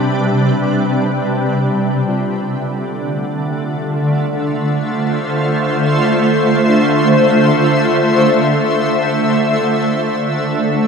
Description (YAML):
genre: ambient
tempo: free time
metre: none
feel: none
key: unclear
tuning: A4 = 440 Hz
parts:
  - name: shimmering ambient pad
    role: sustained chords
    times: 0.0-10.9 s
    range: C3 to E5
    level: -13 LUFS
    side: equal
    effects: chorus, built-in reverb
  - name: soft synth bell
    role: arpeggios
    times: 2.1-10.9 s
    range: D4 to A4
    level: -26 LUFS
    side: right 1 dB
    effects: none
room: wet huge ambient reverb, RT60 7.1 s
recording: none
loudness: -13 LUFS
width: side -6 dB against mid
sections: 0.0-2.1 A section; 2.1-10.9 B section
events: none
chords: 0.0 Cmaj7; 2.1 Dm7